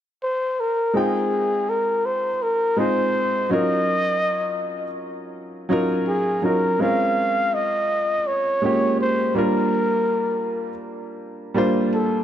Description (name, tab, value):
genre	R&B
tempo	82 BPM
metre	4/4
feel	swing 54% on 16ths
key	unclear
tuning	A4 = 436 Hz
part	breathy trumpet	melody	0.2-12.2 s	Ab4 to F5	-21 LUFS	equal	ping-pong delay
part	warm concert grand piano	accompaniment	0.9-12.2 s	Gb3 to G5	-23 LUFS	equal	none
room	light reverb, small room ambience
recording	dark, warm production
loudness	-19 LUFS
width	side -10 dB against mid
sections	0.9-12.2 A section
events	none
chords	0.0 N.C.; 0.9 Fm9; 3.5 Ebm9; 6.8 Bbm9; 9.4 Gm7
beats	0.21 | 0.95 1.68 2.41 3.14 | 3.87 4.61 5.34 6.07 | 6.80 7.53 8.26 8.99 | 9.73 10.46 11.19 11.92